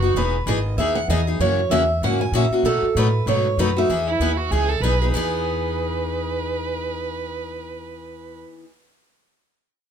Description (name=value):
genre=acoustic string swing (jazz manouche)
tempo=193 BPM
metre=4/4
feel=swing 58% on 8ths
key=E major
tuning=A4 = 440 Hz
part: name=warm violin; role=second line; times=0.0-0.1, 4.1-8.4 s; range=E4 to B4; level=-26 LUFS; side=right 5 dB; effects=none
part: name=picked steel-string acoustic guitar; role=accompaniment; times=0.0-8.7 s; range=B2 to G#4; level=-24 LUFS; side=left 2 dB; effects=none
part: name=upright bass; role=bass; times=0.0-8.4 s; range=E1 to B2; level=-24 LUFS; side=equal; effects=none
part: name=picked steel-string acoustic guitar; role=melody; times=0.2-4.8 s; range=A4 to G#5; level=-23 LUFS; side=right 2 dB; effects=plate reverb
room=light reverb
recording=close, detailed microphones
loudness=-19 LUFS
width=side -8 dB against mid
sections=0.0-5.1 A section; 5.1-7.6 B section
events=none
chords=0.2 Emaj7; 1.4 F#7; 2.6 B7; 3.9 Emaj7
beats=| 0.16 0.47 0.78 1.09 | 1.40 1.71 2.02 2.33 | 2.65 2.96 3.27 3.58 | 3.89 4.20 4.51 4.82 | 5.13 5.44 5.75 6.07 | 6.38 6.69 7.00 7.31